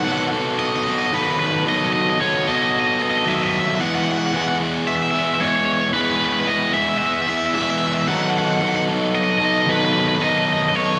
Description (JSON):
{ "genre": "rock", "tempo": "112 BPM", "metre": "4/4", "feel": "straight", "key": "E major", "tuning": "A4 = 440 Hz", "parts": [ { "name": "cranked stack guitar", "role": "melody", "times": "0.0-11.0 s", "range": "B4 to F#5", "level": "-22 LUFS", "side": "equal", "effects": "overdrive, phaser, digital delay" }, { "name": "crunchy overdriven guitar", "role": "riff", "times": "0.0-11.0 s", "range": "D#3 to A4", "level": "-22 LUFS", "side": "equal", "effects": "slapback echo" } ], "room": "wet lush hall reverb, RT60 2.8 s", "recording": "big arena sound", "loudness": "-19 LUFS", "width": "mono", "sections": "0.0-11.0 A section", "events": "none", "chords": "0.0 B7/D#; 3.8 E; 8.1 B7/D#" }